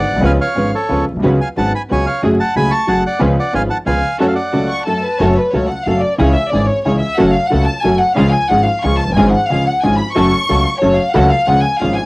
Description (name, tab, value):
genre	tango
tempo	182 BPM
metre	3/4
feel	rubato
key	F# harmonic minor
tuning	A4 = 440 Hz
part	bandoneon	melody	0.0-4.8 s	A4 to C#6	-18 LUFS	right 1 dB	cassette tape
part	warm grand piano	accompaniment	0.0-12.1 s	E#1 to A4	-16 LUFS	equal	none
part	warm studio string section	stabs	0.0-11.9 s	A3 to B4	-22 LUFS	right 1 dB	none
part	upright bass	bass	0.0-12.0 s	E#1 to C#2	-18 LUFS	equal	none
part	warm studio violin section	second line	4.7-12.1 s	A4 to C#6	-16 LUFS	left 1 dB	none
room	light reverb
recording	home recording on cassette, vinyl crackle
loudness	-12 LUFS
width	side -24 dB against mid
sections	0.0-5.2 A section; 5.2-12.1 B section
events	violin section solo 5.2-12.1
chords	0.2 C#7; 1.2 C#7sus4; 2.2 F#madd9; 3.2 C#7; 4.2 F#m; 6.2 C#m; 7.2 F#m; 8.2 C#; 10.2 F#m; 11.2 F#m/C#; 11.5 C#